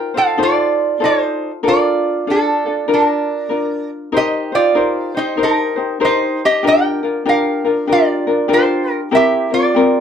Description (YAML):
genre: Hawaiian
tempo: 96 BPM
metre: 4/4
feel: swing 63% on 8ths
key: Bb major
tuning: A4 = 441 Hz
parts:
  - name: lap resonator guitar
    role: melody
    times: 0.0-10.0 s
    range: D4 to G5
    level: -15 LUFS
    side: right 2 dB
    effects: none
  - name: ukulele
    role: accompaniment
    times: 0.0-10.0 s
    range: C4 to C5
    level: -17 LUFS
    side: left 4 dB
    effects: none
room: moderate studio reverb, RT60 0.5 s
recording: dark, warm production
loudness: -13 LUFS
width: side -8 dB against mid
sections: 0.0-4.1 A section; 4.1-10.0 B section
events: none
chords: 0.4 F7; 1.6 Bbmaj7; 4.1 Eb6; 6.6 Bb6; 9.1 C7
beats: 0.39 1.02 | 1.64 2.27 2.89 3.52 | 4.14 4.77 5.39 6.01 | 6.64 7.26 7.89 8.51 | 9.14 9.76